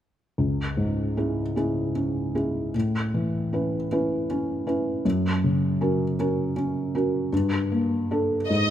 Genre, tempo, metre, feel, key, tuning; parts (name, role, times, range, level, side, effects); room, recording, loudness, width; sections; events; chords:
cinematic, emotional film score for orchestra; 52 BPM (dotted quarters); 6/8; rubato; C# minor; A4 = 442 Hz
felt-muted upright piano; accompaniment; 0.4-8.7 s; C#2 to B4; -23 LUFS; equal
rich studio violin section; melody; 8.5-8.7 s; D#5; -23 LUFS; left 2 dB
light reverb; close, detailed microphones; -23 LUFS; side -10 dB against mid
0.4-8.7 A section
0.4 C#m; 2.7 Aadd9; 5.0 F#; 7.3 Gmadd9